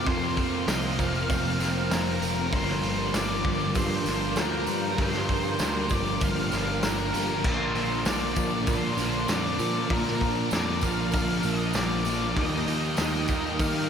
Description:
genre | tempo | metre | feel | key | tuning
rock, shoegaze and dream pop | 98 BPM | 4/4 | straight | G minor | A4 = 440 Hz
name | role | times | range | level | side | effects
octave-fuzz lead guitar | melody | 0.0-13.9 s | Bb4 to F5 | -32 LUFS | left 2 dB | distortion, analog delay
ensemble organ-string | sustained chords | 0.0-13.9 s | D3 to A5 | -35 LUFS | equal | ensemble chorus
fingerpicked plugged-in twelve-string acoustic guitar | arpeggios | 0.0-13.9 s | Eb3 to G4 | -36 LUFS | right 6 dB | none
overdriven electric guitar | riff | 0.0-13.9 s | F2 to Eb4 | -32 LUFS | right 7 dB | reverse reverb
thick fuzz guitar | riff | 0.0-13.9 s | F2 to Eb4 | -31 LUFS | left 7 dB | distortion, analog chorus
modern bright picked electric bass | bass | 0.0-13.9 s | F1 to Eb3 | -32 LUFS | equal | none
loose indie drum kit | drums | 0.1-13.7 s | crash cymbal, hi-hat, kick drum, snare drum | -30 LUFS | equal | none
tambourine | percussion | 0.4-13.7 s | none | -44 LUFS | right 11 dB | none
room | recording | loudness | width
wet huge ambient reverb, RT60 7.5 s | dreamy mix soaked in reverb | -24 LUFS | side -7 dB against mid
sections
0.0-13.9 A section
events
none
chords
0.0 Fsus4; 2.5 Gm7; 7.4 Bbmaj7; 12.4 Eb

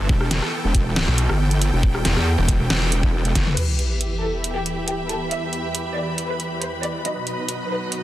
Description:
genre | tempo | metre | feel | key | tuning
heavy wobble dubstep | 138 BPM | 4/4 | half-time | E minor | A4 = 440 Hz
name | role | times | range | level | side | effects
supersaw chords | sustained chords | 0.0-8.0 s | E2 to G5 | -28 LUFS | right 1 dB | sidechain pumping, low-pass filter
snarling distorted saw bass | bass | 0.0-2.6 s | E1 to B1 | -21 LUFS | equal | distortion, overdrive
wobble bass | bass | 0.1-3.6 s | E1 to E2 | -21 LUFS | equal | chorus, overdrive
electronic kick drum | drums | 0.1-3.4 s | none | -20 LUFS | equal | none
dubstep drum kit | drums | 0.2-8.0 s | crash cymbal, hi-hat, rim click, snare drum, toms | -24 LUFS | equal | soft clipping on snare
dark symphonic violin section | melody | 3.6-7.9 s | G4 to E5 | -29 LUFS | equal | dub echo
sub drop | sound effects | 3.6-5.3 s | none | -26 LUFS | equal | none
rich symphonic string section | texture | 3.6-8.0 s | F#4 to B5 | -30 LUFS | equal | sidechain pumping
room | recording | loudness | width
light reverb | dense, heavily limited modern master | -19 LUFS | side -14 dB against mid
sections
0.0-3.6 A section; 3.6-8.0 B section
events
drop 0.0-3.6; drum fill 3.4; impact 3.6-5.3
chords
0.0 E5; 3.6 Em; 7.0 B

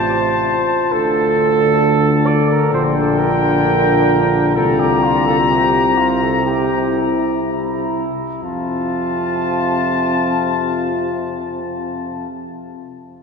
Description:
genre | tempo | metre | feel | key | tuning
classical, brass quintet | 58-67 BPM | 4/4 | rubato | F major | A4 = 440 Hz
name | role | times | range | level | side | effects
clear trumpet | melody | 0.0-12.3 s | G5 to Bb5 | -21 LUFS | left 5 dB | none
warm flugelhorn | second line | 0.0-12.3 s | E4 to D5 | -20 LUFS | right 3 dB | none
bright trombone | accompaniment | 0.0-12.3 s | C3 to D3 | -24 LUFS | left 1 dB | none
warm French horn | accompaniment | 0.0-12.3 s | E4 to F4 | -24 LUFS | left 2 dB | none
mellow tuba | bass | 0.0-12.3 s | A1 to F2 | -20 LUFS | right 1 dB | none
room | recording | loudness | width
wet cathedral reverb, RT60 3.9 s | minimal, uncompressed stereo recording | -14 LUFS | side -5 dB against mid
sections
0.0-8.4 A section; 8.4-12.4 B section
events
slowing down 0.0-8.4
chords
0.0 F/A; 0.9 Dm; 2.7 Gm7/Bb; 4.6 C7sus4; 6.4 C7; 8.4 F

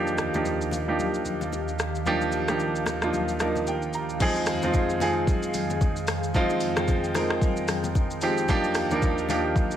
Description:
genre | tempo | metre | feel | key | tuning
amapiano | 112 BPM | 4/4 | swing 58% on 16ths | F dorian | A4 = 440 Hz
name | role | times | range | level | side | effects
clear grand piano | accompaniment | 0.0-9.8 s | F3 to Bb5 | -25 LUFS | right 1 dB | low-pass filter
airy breathy pad | sustained chords | 0.0-9.8 s | Eb2 to G5 | -31 LUFS | equal | chorus, sidechain pumping, low-pass filter
smooth R&B drum kit | drums | 0.1-9.8 s | crash cymbal, hi-hat, kick drum, rim click, shaker | -28 LUFS | equal | vintage 12-bit sampler grit
bongos and congas | percussion | 0.1-9.7 s | none | -35 LUFS | left 6 dB | none
room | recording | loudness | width
light reverb | none | -23 LUFS | side -10 dB against mid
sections
0.0-4.2 A section; 4.2-9.8 B section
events
grand piano fill 3.1-4.2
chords
0.0 Ebmaj9; 4.2 Fm7; 8.5 Ebmaj9

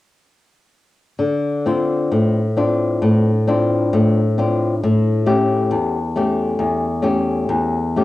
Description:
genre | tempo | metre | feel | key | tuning
fado | 66 BPM | 2/4 | rubato | D minor | A4 = 436 Hz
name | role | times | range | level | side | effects
flamenco guitar | accompaniment | 1.2-8.0 s | E2 to G4 | -16 LUFS | left 1 dB | cassette tape
room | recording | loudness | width
wet studio reverb, RT60 0.6 s | home recording on cassette | -16 LUFS | side -16 dB against mid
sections
1.2-8.0 A section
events
none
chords
1.2 Dm7; 4.8 A7

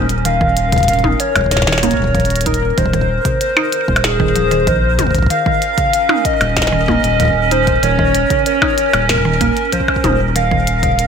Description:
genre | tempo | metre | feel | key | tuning
IDM | 95 BPM | 4/4 | straight | unclear | A4 = 441 Hz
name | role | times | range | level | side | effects
warbly nostalgic lead | melody | 0.0-11.1 s | Ab4 to F5 | -17 LUFS | left 1 dB | wide subtle chorus, tape echo
warbly tape-like pad | sustained chords | 0.0-11.1 s | Db4 to C5 | -22 LUFS | right 4 dB | chorus, built-in reverb, vintage 12-bit sampler grit, sidechain pumping
mallet-like synth pluck | arpeggios | 0.0-11.0 s | Eb2 to Eb4 | -22 LUFS | right 3 dB | chorus, ping-pong delay
round analog bass | bass | 0.0-11.1 s | Eb1 to Bb1 | -18 LUFS | equal | none
pulsing gated texture | texture | 0.0-11.1 s | Bb4 | -24 LUFS | right 4 dB | chorus, built-in reverb
glitchy drum kit | drums | 0.1-11.1 s | hi-hat, percussion blips, snare drum, toms | -19 LUFS | left 2 dB | ping-pong delay
electronic kick drum | drums | 0.4-11.0 s | none | -20 LUFS | equal | none
room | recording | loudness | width
light reverb, digital ambience | none | -12 LUFS | side -7 dB against mid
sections
0.0-11.1 A section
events
none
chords
0.0 Db69/Eb; 2.8 Ab7/Eb; 5.3 Dbmaj13/Eb

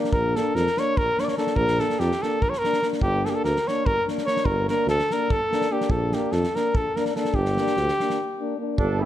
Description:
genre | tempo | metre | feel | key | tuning
balkan folk, Balkan brass band | 291 BPM (eighths) | 7/8 | straight | G minor | A4 = 439 Hz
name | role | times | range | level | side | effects
clear euphonium | accompaniment | 0.0-9.1 s | D4 | -30 LUFS | left 7 dB | none
warm trombone | accompaniment | 0.0-9.1 s | Bb3 | -32 LUFS | right 4 dB | none
loose indie drum kit | percussion | 0.0-8.9 s | kick drum, snare drum | -29 LUFS | right 1 dB | none
mellow cornet | melody | 0.1-9.1 s | G4 to D5 | -24 LUFS | equal | none
warm tuba | bass | 0.1-9.0 s | G1 to F2 | -27 LUFS | equal | none
warm flugelhorn | second line | 8.8-9.1 s | D4 to E4 | -29 LUFS | right 7 dB | none
room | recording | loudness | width
light reverb | none | -21 LUFS | side -12 dB against mid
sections
0.0-8.8 A section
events
break 8.2-8.8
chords
0.1 Bb; 3.0 Gm; 5.9 Bb; 7.3 Gm

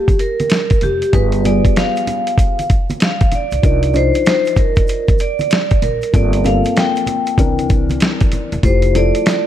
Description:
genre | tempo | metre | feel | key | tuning
hip hop, jazz-hop | 96 BPM | 4/4 | swing 64% on 16ths | G minor | A4 = 440 Hz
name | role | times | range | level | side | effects
vibraphone with hard mallets | melody | 0.0-9.5 s | G4 to G5 | -18 LUFS | right 1 dB | none
dark upright piano | accompaniment | 0.0-9.5 s | E3 to C5 | -20 LUFS | left 3 dB | none
dusty soul sampler-style drum kit | drums | 0.1-9.4 s | hi-hat, kick drum, snare drum | -15 LUFS | equal | none
congas and tube shaker | percussion | 0.1-9.5 s | none | -28 LUFS | right 3 dB | none
upright bass | bass | 0.8-9.1 s | E1 to C2 | -18 LUFS | equal | none
room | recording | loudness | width
light reverb, studio reverb | dark, warm production | -12 LUFS | side -11 dB against mid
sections
0.0-9.5 A section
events
none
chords
0.0 Gm9; 1.1 G7b9; 3.6 Cm11; 6.1 Gm11; 7.4 C9; 8.6 Fmaj9

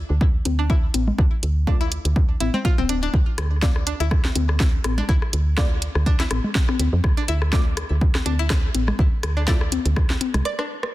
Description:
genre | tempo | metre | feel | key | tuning
minimal techno | 123 BPM | 4/4 | swing 55% on 16ths | D minor | A4 = 441 Hz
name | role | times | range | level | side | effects
woody FM bass | bass | 0.0-10.4 s | D1 to F2 | -22 LUFS | equal | sidechain pumping
electronic kick drum | drums | 0.2-10.1 s | none | -20 LUFS | equal | none
garage drum kit | drums | 0.5-10.9 s | hi-hat, rim click, snare drum | -27 LUFS | right 1 dB | overdrive
booming analog drum machine | percussion | 0.5-10.4 s | congas, rim click, toms | -27 LUFS | left 5 dB | soft clipping on snare, tape echo
string-like resonator pluck | riff | 0.6-10.6 s | C4 to D5 | -30 LUFS | equal | chorus, sidechain pumping, digital delay
filtered dub chord stab | stabs | 1.7-9.6 s | A3 to D5 | -34 LUFS | left 1 dB | chorus, tape echo
room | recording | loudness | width
digital ambience | dense, heavily limited modern master | -18 LUFS | side -16 dB against mid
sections
0.0-10.9 A section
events
break 10.5-10.9; drum fill 10.5-10.9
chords
0.0 D5

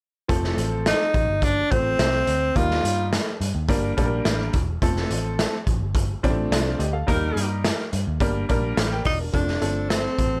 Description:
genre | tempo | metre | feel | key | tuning
uptempo 1960s-style soul | 106 BPM | 4/4 | straight | F mixolydian | A4 = 440 Hz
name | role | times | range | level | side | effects
bright upright piano | accompaniment | 0.3-10.3 s | F3 to G5 | -29 LUFS | equal | none
vintage muted picked electric bass | bass | 0.3-10.4 s | E1 to G2 | -29 LUFS | equal | none
raw garage drum kit | drums | 0.3-10.3 s | hi-hat, kick drum, snare drum | -27 LUFS | equal | none
breathy tenor saxophone | melody | 0.9-3.1, 9.1-10.4 s | C4 to F4 | -25 LUFS | equal | none
warm saxophone section | second line | 7.1-7.5 s | Eb4 to Bb4 | -30 LUFS | equal | none
room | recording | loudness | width
light reverb | none | -23 LUFS | mono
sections
0.3-9.3 A section; 9.3-10.4 B section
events
band accent 7.1-9.3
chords
0.3 F; 2.6 Eb; 3.7 Gm; 4.8 F; 7.1 Eb; 8.2 Gm; 9.3 F

